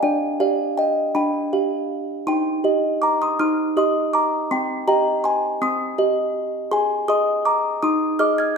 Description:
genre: classical, lullaby for music box.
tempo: 54 BPM (dotted quarters).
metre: 6/8.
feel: rubato.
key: C minor.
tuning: A4 = 440 Hz.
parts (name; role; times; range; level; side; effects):
music box; solo; 0.0-8.6 s; C4 to Ab6; -18 LUFS; equal; none.
room: wet recital hall reverb, RT60 1.6 s.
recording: recorded in a church or concert hall.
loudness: -18 LUFS.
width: side -5 dB against mid.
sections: 0.0-8.6 A section.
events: none.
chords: 0.0 G7/D; 2.3 Cm/Eb; 4.5 Cm; 6.7 Ab.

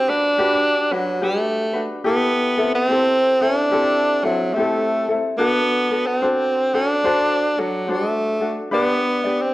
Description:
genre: hawaiian.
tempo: 72 BPM.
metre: 4/4.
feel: swing 63% on 8ths.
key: G major.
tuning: A4 = 441 Hz.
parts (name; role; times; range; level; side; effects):
warm tenor saxophone; melody; 0.0-9.5 s; F#3 to D4; -18 LUFS; equal; none.
ukulele; accompaniment; 0.0-9.5 s; C4 to D5; -22 LUFS; left 2 dB; none.
room: moderate recital hall reverb, RT60 1.4 s.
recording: worn, warbling old tape, cassette tape, warbly pitch drift.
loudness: -17 LUFS.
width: side -17 dB against mid.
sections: 0.0-9.5 A section.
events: none.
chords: 0.0 Gmaj7; 2.1 Am7; 5.4 D7; 8.7 G.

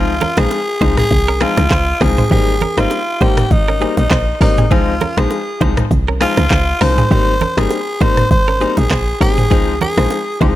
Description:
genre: afrobeats.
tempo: 100 BPM.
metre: 4/4.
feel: swing 55% on 16ths.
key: unclear.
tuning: A4 = 435 Hz.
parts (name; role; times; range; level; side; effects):
growling tenor saxophone; melody; 0.0-10.6 s; Eb4 to C5; -18 LUFS; equal; ping-pong delay.
clear baby grand piano; accompaniment; 0.0-10.6 s; F3 to Eb4; -20 LUFS; left 6 dB; none.
direct-recorded clean electric guitar; riff; 0.0-10.5 s; C4 to C5; -24 LUFS; right 6 dB; harmonic tremolo, ping-pong delay.
woody log drum bass; bass; 0.0-10.6 s; G1 to Db2; -17 LUFS; equal; none.
afro-pop drum kit; drums; 0.2-10.6 s; finger snaps, handclaps, hi-hat, kick drum, rim click, shaker, toms; -17 LUFS; equal; none.
bongos and congas; percussion; 0.2-10.6 s; none; -24 LUFS; right 6 dB; none.
room: digital ambience.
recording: none.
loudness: -12 LUFS.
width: side -14 dB against mid.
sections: 0.0-10.6 A section.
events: none.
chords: 0.0 Dbmaj7; 2.3 Abmaj7; 4.7 Dbmaj7; 7.1 Abmaj7; 9.5 Dbmaj7.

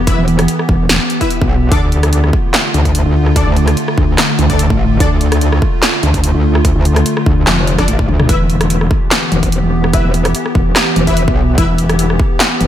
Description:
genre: heavy wobble dubstep.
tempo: 146 BPM.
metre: 4/4.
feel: swing 54% on 16ths, half-time.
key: E phrygian.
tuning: A4 = 440 Hz.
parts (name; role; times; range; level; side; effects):
evolving wavetable pad; sustained chords; 0.0-12.7 s; D3 to G4; -18 LUFS; equal; chorus, built-in reverb, sidechain pumping.
metallic wobble bass; bass; 0.0-12.2 s; E1 to D2; -13 LUFS; equal; chorus, overdrive.
supersaw stab; stabs; 0.1-5.1, 7.8-11.7 s; D4 to E5; -22 LUFS; left 2 dB; ensemble chorus, analog delay.
big-room dance drum kit; drums; 0.1-12.7 s; handclaps, hi-hat, rim click, snare drum, toms; -17 LUFS; equal; small room ambience.
electronic kick drum; drums; 0.1-12.3 s; none; -15 LUFS; equal; small room ambience.
metallic wobble bass; bass; 0.2-12.7 s; E1 to D2; -13 LUFS; equal; chorus, overdrive.
room: light reverb.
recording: none.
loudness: -10 LUFS.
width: side -11 dB against mid.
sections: 0.0-12.7 A section.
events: drum fill 8.1.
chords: 0.0 Em; 1.7 Dm; 8.3 Em.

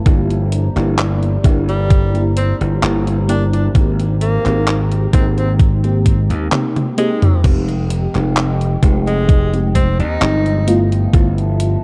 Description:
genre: vaporwave.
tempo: 65 BPM.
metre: 4/4.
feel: straight.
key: F dorian.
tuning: A4 = 440 Hz.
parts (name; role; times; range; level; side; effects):
warbly tape-like pad; sustained chords; 0.0-11.8 s; F3 to Bb5; -32 LUFS; equal; chorus, built-in reverb.
FM electric piano with soft pad layer; accompaniment; 0.1-11.8 s; Ab3 to G4; -23 LUFS; equal; ensemble chorus, analog delay.
slap bass; bass; 0.1-11.8 s; F1 to Eb2; -19 LUFS; equal; tube saturation.
detuned 8-bit digital drum machine; drums; 0.1-11.8 s; crash cymbal, handclaps, hi-hat, toms; -22 LUFS; equal; none.
electronic kick drum; drums; 0.1-11.3 s; none; -15 LUFS; equal; none.
bright tenor saxophone; melody; 1.7-10.8 s; G3 to Eb4; -26 LUFS; equal; tape echo.
room: digital ambience.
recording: dark, warm production, cassette tape.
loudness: -15 LUFS.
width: mono.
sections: 0.0-7.4 A section; 7.4-11.8 B section.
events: drum fill 6.5-7.4.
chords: 0.1 C9/G; 3.8 Abmaj9; 7.4 Fm9; 10.7 G13.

